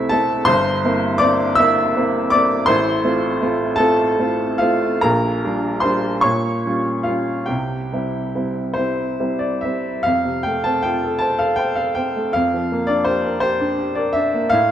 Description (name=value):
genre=classical, romantic nocturne for solo piano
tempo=46-57 BPM (dotted quarters)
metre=6/8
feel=rubato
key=F major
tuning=A4 = 437 Hz
part: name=clear upright piano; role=solo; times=0.0-14.7 s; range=G1 to E6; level=-16 LUFS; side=equal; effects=none
room=wet recital hall reverb, RT60 1.8 s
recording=dark, warm production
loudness=-16 LUFS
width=side -10 dB against mid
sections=0.0-10.1 A section; 10.1-14.7 B section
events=none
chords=0.5 C7/G; 2.7 F/A; 5.0 Gm7/Bb; 6.2 Gm7b5/Bb; 7.5 C; 10.1 F; 12.4 Bb6/F